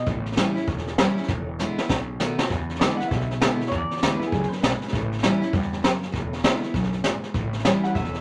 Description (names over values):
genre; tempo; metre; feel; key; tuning
rockabilly; 198 BPM; 4/4; swing 62% on 8ths; E mixolydian; A4 = 438 Hz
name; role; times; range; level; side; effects
electric guitar through a small old amp; melody; 0.0-0.1, 2.8-5.2, 7.7-8.2 s; G#4 to F#5; -33 LUFS; equal; none
picked steel-string acoustic guitar; accompaniment; 0.0-8.2 s; E2 to F#4; -29 LUFS; equal; none
upright bass; bass; 0.1-8.2 s; E1 to E2; -33 LUFS; equal; none
jazz brush drum kit; drums; 0.1-8.2 s; hi-hat, kick drum, snare drum; -27 LUFS; equal; none
room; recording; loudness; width
moderate studio reverb, RT60 0.5 s; none; -24 LUFS; mono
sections
0.0-2.5 A section; 2.5-8.2 A section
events
drum fill 1.3-2.5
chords
0.1 A7; 1.3 E7; 1.9 B7; 2.5 E7; 4.9 A7; 6.1 E7; 7.4 A7